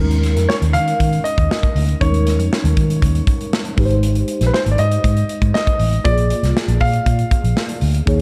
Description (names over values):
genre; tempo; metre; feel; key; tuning
polished 1980s jazz-funk pop; 119 BPM; 4/4; straight; unclear; A4 = 440 Hz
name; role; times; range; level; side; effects
mellow tine electric piano; accompaniment; 0.0-8.2 s; G3 to D5; -26 LUFS; equal; ensemble chorus
vintage muted fingered electric bass; bass; 0.0-8.2 s; Ab1 to Eb3; -19 LUFS; equal; none
modern studio drum kit; drums; 0.1-8.2 s; hi-hat, kick drum, snare drum; -22 LUFS; equal; none
clear baby grand piano; melody; 0.5-7.8 s; Cb5 to F5; -25 LUFS; equal; none
room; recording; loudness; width
light reverb, small room ambience; dark, warm production; -17 LUFS; mono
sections
0.0-8.2 A section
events
none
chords
0.0 Eb7sus4; 3.8 Abmaj7; 6.1 Bb7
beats
0.49 1.00 1.50 | 2.01 2.51 3.02 3.52 | 4.03 4.54 5.04 5.55 | 6.05 6.56 7.06 7.57 | 8.07